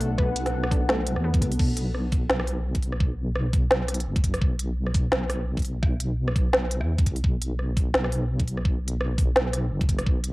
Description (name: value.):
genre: half-time drum and bass.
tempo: 170 BPM.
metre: 4/4.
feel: swing 56% on 16ths, half-time.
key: B phrygian.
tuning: A4 = 440 Hz.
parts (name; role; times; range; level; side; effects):
deep dark ambient pad; sustained chords; 0.0-1.6 s; B3 to F#5; -37 LUFS; left 2 dB; chorus, built-in reverb, sidechain pumping, cassette tape.
warbly dusty pluck; arpeggios; 0.0-1.6 s; A3 to B4; -32 LUFS; left 1 dB; chorus, cassette tape, analog delay.
deep soft wobble bass; bass; 0.0-10.3 s; F#1 to E2; -26 LUFS; equal; chorus.
organic electronic drum kit; drums; 0.0-10.3 s; crash cymbal, hi-hat, rim click, snare drum; -27 LUFS; equal; cassette tape.
pulsing gated texture; texture; 0.0-1.6 s; D4 to A4; -39 LUFS; left 1 dB; chorus, built-in reverb, cassette tape.
electronic kick drum; drums; 0.2-10.1 s; none; -23 LUFS; equal; cassette tape.
room: light reverb.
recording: home recording on cassette.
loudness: -22 LUFS.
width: side -21 dB against mid.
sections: 0.0-1.6 A section; 1.6-10.3 A section.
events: drop 0.0-1.6, 1.6-10.3.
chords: 0.0 Bm; 1.6 N.C..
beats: | 0.18 0.53 0.89 1.24 | 1.59 1.94 2.30 2.65 | 3.00 3.36 3.71 4.06 | 4.42 4.77 5.12 5.47 | 5.83 6.18 6.53 6.88 | 7.24 7.59 7.94 8.30 | 8.65 9.00 9.36 9.71 | 10.06.